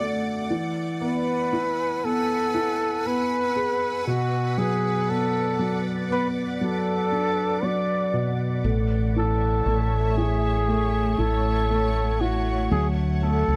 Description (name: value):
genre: pop ballad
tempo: 59 BPM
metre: 4/4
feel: straight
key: A major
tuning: A4 = 440 Hz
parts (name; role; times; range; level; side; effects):
- clear flugelhorn; melody; 0.0-13.6 s; F#4 to D5; -28 LUFS; equal; none
- dark baby grand piano; accompaniment; 0.0-13.6 s; B2 to G#4; -29 LUFS; equal; none
- granular cloud pad; sustained chords; 0.0-13.6 s; A3 to E6; -34 LUFS; equal; built-in reverb
- mellow fretless electric bass; bass; 8.6-13.6 s; A1 to D2; -26 LUFS; equal; none
room: little or no reverb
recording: dry, close 1970s-style studio recording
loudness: -24 LUFS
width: mono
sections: 0.0-13.6 A section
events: none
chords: 0.0 D; 0.5 Eadd9; 4.1 Bm; 8.6 A; 12.7 D